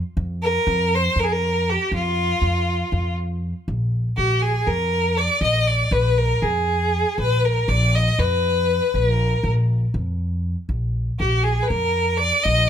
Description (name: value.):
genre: turkish.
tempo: 239 BPM (eighths).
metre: 7/8.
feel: straight.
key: F makam ussak, Bb makam hicaz from 3.7 s.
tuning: A4 = 440 Hz.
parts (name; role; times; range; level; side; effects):
upright bass; bass; 0.2-12.7 s; Bb1 to F2; -21 LUFS; equal; none.
bright violin; melody; 0.4-12.7 s; F4 to Eb5; -20 LUFS; equal; none.
room: little or no reverb.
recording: close, detailed microphones.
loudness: -18 LUFS.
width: side -9 dB against mid.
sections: 0.0-3.7 A section; 3.7-12.7 B section.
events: none.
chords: none.